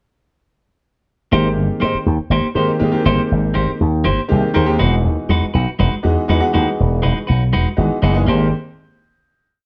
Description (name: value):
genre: jazz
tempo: 242 BPM (eighths)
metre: 7/8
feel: straight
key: unclear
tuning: A4 = 442 Hz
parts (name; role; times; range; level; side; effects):
- warm grand piano; accompaniment; 1.3-8.5 s; Eb3 to Bb4; -22 LUFS; equal; none
- clean electric guitar; stabs; 1.3-8.5 s; G#3 to C5; -23 LUFS; equal; none
- slap bass with an envelope filter; bass; 1.3-8.5 s; E1 to Ab2; -19 LUFS; equal; none
room: moderate studio reverb, RT60 0.8 s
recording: band playing live in one room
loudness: -17 LUFS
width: mono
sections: 1.3-8.3 groove; 8.3-9.7 final chord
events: none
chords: 1.3 Abmaj9; 4.8 Emaj9; 8.3 Abmaj9